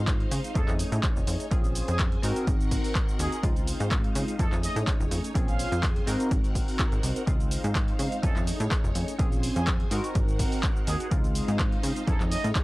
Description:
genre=filtered disco house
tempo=125 BPM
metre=4/4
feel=swing 54% on 16ths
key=Db major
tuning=A4 = 440 Hz
part: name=funky polysynth comp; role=accompaniment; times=0.0-12.6 s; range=Ab3 to Bb4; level=-33 LUFS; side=equal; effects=chorus, phaser, sidechain pumping
part: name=phased string machine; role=sustained chords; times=0.0-12.6 s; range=C4 to Ab5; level=-39 LUFS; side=equal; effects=ensemble chorus, phaser, sidechain pumping
part: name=plucky analog bass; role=bass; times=0.0-12.5 s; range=F1 to Db3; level=-30 LUFS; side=equal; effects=sidechain pumping
part: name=electronic kick drum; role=drums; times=0.1-12.6 s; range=none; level=-26 LUFS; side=equal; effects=none
part: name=punchy analog drum machine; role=drums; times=0.1-12.6 s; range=handclaps, hi-hat, shaker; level=-34 LUFS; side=equal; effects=sidechain pumping on hats, sidechain pumping on perc
part: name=warm trumpet section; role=melody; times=0.6-12.4 s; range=Ab4 to F5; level=-36 LUFS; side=right 1 dB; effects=sidechain pumping, analog delay
room=little or no reverb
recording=dry, gritty hardware recording, cassette tape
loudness=-24 LUFS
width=side -20 dB against mid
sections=0.0-12.6 A section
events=none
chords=0.0 Dbmaj9; 0.6 F7alt; 1.5 Bbm9; 2.2 Ab9; 3.4 Dbmaj9; 4.4 F7alt; 5.4 Bbm9; 6.1 Ab9; 7.3 Dbmaj9; 8.2 F7alt; 9.2 Bbm9; 9.9 Ab9; 11.1 Dbmaj9; 12.1 F7alt

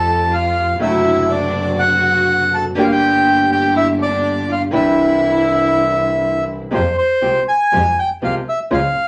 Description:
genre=tango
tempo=122 BPM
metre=4/4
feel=rubato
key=unclear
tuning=A4 = 437 Hz
part: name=bandoneon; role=melody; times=0.0-9.1 s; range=C5 to A5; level=-18 LUFS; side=equal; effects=none
part: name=warm studio violin section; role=second line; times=0.0-6.4 s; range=D4 to A4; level=-25 LUFS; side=equal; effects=none
part: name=nylon-string guitar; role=accompaniment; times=0.0-8.8 s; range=C3 to G4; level=-22 LUFS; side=equal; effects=none
part: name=rich studio string section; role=stabs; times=0.0-8.9 s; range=Ab3 to G4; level=-32 LUFS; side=equal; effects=none
part: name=clear double bass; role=bass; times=0.0-8.9 s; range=F#1 to F2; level=-26 LUFS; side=equal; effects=none
room=wet studio reverb, RT60 0.5 s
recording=vinyl crackle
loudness=-16 LUFS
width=mono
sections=0.0-6.7 A section; 6.7-9.1 B section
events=none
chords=0.0 Fadd9; 0.8 D7/F#; 2.8 Gm; 4.7 Cadd9; 6.7 Fmadd9

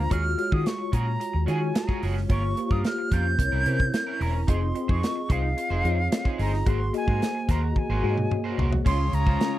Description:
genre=polished 1980s jazz-funk pop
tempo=110 BPM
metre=4/4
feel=straight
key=Db major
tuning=A4 = 440 Hz
part: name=silver concert flute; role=melody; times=0.0-9.6 s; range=F5 to G6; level=-30 LUFS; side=right 1 dB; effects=slapback echo
part: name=mellow tine electric piano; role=accompaniment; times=0.0-9.6 s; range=Ab3 to Eb5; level=-30 LUFS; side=left 2 dB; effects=medium stereo tremolo, analog chorus
part: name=electric guitar at the edge of break-up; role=riff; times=0.0-9.6 s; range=Db4 to C5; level=-36 LUFS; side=right 4 dB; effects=lush chorus
part: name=vintage muted fingered electric bass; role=bass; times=0.0-9.4 s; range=E1 to Eb3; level=-25 LUFS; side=equal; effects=none
part: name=modern studio drum kit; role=drums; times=0.1-9.5 s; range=crash cymbal, hi-hat, kick drum, snare drum, toms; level=-26 LUFS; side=equal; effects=none
part: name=soft string machine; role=sustained chords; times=8.8-9.6 s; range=Db3 to F4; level=-31 LUFS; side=left 4 dB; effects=phaser, ensemble chorus
part: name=warm horn section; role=second line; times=8.9-9.6 s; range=F4 to Db5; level=-36 LUFS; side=left 2 dB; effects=none
room=little or no reverb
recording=dry, close 1970s-style studio recording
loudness=-22 LUFS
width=side -14 dB against mid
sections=0.0-8.9 A section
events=drum fill 7.8-8.9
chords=0.1 Ebm11; 2.3 Gm7b5; 3.4 C7b9; 4.5 Fm7; 6.7 Ab9; 8.9 Dbmaj7

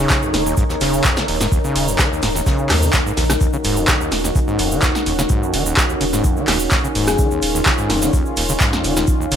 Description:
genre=acid house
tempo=127 BPM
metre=4/4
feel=straight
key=Eb minor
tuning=A4 = 438 Hz
part: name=overdriven acid bass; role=riff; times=0.0-9.4 s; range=Eb2 to Eb3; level=-23 LUFS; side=equal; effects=distortion, tube saturation, sidechain pumping, ping-pong delay
part: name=warm sub bass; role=bass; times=0.0-9.4 s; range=Eb1 to Eb2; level=-24 LUFS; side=equal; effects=sidechain pumping
part: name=deep dark ambient pad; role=texture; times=0.0-9.4 s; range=Eb4 to Db5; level=-23 LUFS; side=left 1 dB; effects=chorus, built-in reverb, sidechain pumping
part: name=electronic kick drum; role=drums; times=0.1-9.2 s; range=none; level=-19 LUFS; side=equal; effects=overdrive
part: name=punchy analog drum machine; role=drums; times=0.1-9.4 s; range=handclaps, hi-hat, rim click, snare drum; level=-20 LUFS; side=equal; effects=overdrive
part: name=vintage brush drum kit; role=drums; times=0.1-9.4 s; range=hi-hat, shaker, snare drum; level=-29 LUFS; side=left 2 dB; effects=none
part: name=egg shaker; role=percussion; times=0.1-9.3 s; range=none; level=-28 LUFS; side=right 4 dB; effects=none
part: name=warm analog pad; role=sustained chords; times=3.4-9.4 s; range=Eb3 to Gb4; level=-25 LUFS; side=right 2 dB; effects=chorus, tremolo, sidechain pumping
part: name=thumb-piano-like synth pluck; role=melody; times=7.1-7.5 s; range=Ab4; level=-28 LUFS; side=left 4 dB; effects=chorus, cassette tape, dub echo
room=light reverb, small room ambience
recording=none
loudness=-15 LUFS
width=side -9 dB against mid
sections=0.0-9.4 A section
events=none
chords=0.0 Ebm7

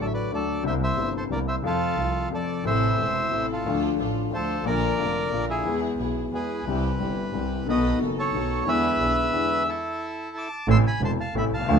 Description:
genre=tango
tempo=180 BPM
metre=3/4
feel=rubato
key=unclear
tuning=A4 = 439 Hz
part: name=bandoneon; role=melody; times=0.0-11.8 s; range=E4 to E6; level=-27 LUFS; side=right 1 dB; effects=none
part: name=clear grand piano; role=accompaniment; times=0.0-11.8 s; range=E1 to G#4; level=-26 LUFS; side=left 4 dB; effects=none
part: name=clear double bass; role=bass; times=0.0-11.8 s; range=E1 to F2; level=-28 LUFS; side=right 4 dB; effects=none
part: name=dark chamber string section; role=stabs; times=2.7-9.7 s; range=B3 to Bb4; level=-33 LUFS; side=right 1 dB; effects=none
room=wet club reverb, RT60 0.6 s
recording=minimal, uncompressed stereo recording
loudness=-22 LUFS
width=side -6 dB against mid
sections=0.0-10.7 A section; 10.7-11.8 B section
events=stop 9.7-10.7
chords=0.0 D; 0.6 C7; 1.6 F; 2.7 Am; 3.7 Dm; 4.7 Bb; 5.7 E; 6.7 C; 7.7 B7; 8.7 E7; 9.7 A5; 10.7 Am

